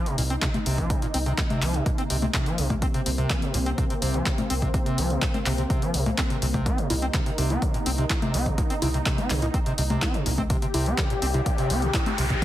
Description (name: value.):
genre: acid house.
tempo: 125 BPM.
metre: 4/4.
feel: straight.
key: C minor.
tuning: A4 = 440 Hz.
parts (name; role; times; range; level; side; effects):
warm analog pad; sustained chords; 0.0-12.4 s; C3 to G4; -32 LUFS; equal; chorus, sidechain pumping.
overdriven acid bass; riff; 0.0-12.4 s; Bb2 to C4; -28 LUFS; equal; lush chorus, sidechain pumping, dub echo.
punchy analog drum machine; drums; 0.1-12.4 s; congas, handclaps, hi-hat; -29 LUFS; left 2 dB; overdrive.
round analog bass; bass; 0.2-12.4 s; C2; -27 LUFS; equal; sidechain pumping.
electronic kick drum; drums; 0.4-12.4 s; none; -26 LUFS; equal; overdrive.
riser; sound effects; 11.0-12.4 s; none; -31 LUFS; left 1 dB; none.
room: light reverb, digital ambience.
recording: heavily compressed radio sound, multiband compression.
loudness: -22 LUFS.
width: side -13 dB against mid.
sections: 0.0-12.4 A section.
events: riser 11.0-12.4.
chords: 0.0 Cm7.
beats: 0.42 | 0.90 1.38 1.86 2.34 | 2.82 3.30 3.78 4.26 | 4.74 5.22 5.70 6.18 | 6.66 7.14 7.62 8.10 | 8.58 9.06 9.54 10.02 | 10.50 10.98 11.46 11.94 | 12.42.